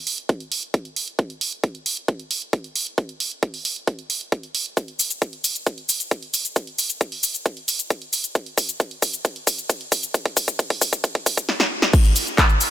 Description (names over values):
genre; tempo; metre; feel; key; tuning
trance; 134 BPM; 4/4; straight; none; none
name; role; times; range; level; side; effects
punchy analog drum machine; drums; 0.1-12.7 s; crash cymbal, handclaps, hi-hat, shaker, snare drum; -22 LUFS; equal; high-pass filter on hats, high-pass filter on perc, high-pass filter on snare, high-pass filter on cymbals
electronic kick drum; drums; 0.3-12.5 s; none; -19 LUFS; equal; high-pass filter on kick
room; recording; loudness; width
light reverb; none; -21 LUFS; side -12 dB against mid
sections
0.0-11.9 A section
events
build-up 0.0-11.9; drum fill 4.8-11.5, 11.5-11.9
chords
none